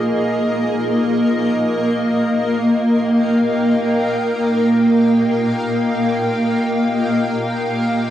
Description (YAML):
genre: ambient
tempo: free time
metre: none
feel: none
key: unclear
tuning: A4 = 440 Hz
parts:
  - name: granular cloud pad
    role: solo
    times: 0.0-8.1 s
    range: Bb3 to G5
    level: -15 LUFS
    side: equal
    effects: built-in reverb, cassette tape, tape echo
room: wet booth ambience, RT60 0.3 s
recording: home recording on cassette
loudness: -15 LUFS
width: side -11 dB against mid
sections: 0.0-8.1 A section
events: none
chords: 0.1 Ebadd9/Bb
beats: free time